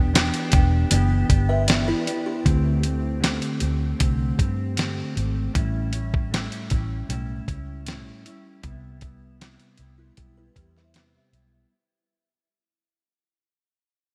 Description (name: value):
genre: indie pop, bedroom pop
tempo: 78 BPM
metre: 4/4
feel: straight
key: unclear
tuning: A4 = 439 Hz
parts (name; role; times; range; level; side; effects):
- mellow electric guitar; accompaniment; 0.0-11.7 s; A2 to G4; -31 LUFS; equal; lush chorus, vibrato effect
- vintage muted fingered electric bass; bass; 0.0-11.6 s; E1 to G2; -27 LUFS; equal; none
- dusty soul sampler-style drum kit; drums; 0.2-11.5 s; hi-hat, kick drum, snare drum; -25 LUFS; equal; none
- buzzing kalimba; second line; 1.5-2.6, 10.0-11.7 s; B3 to E5; -31 LUFS; equal; ensemble chorus, digital delay
room: light reverb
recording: bright 1980s-style digital production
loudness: -23 LUFS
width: mono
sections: 0.0-11.7 A section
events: fade-out 0.0-11.7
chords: 0.0 Em7; 2.5 D7sus4; 5.5 A7; 8.6 Cmaj7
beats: 0.14 0.92 1.69 | 2.46 3.23 4.00 4.77 | 5.54 6.32 7.09 7.86 | 8.63 9.40 10.17 10.94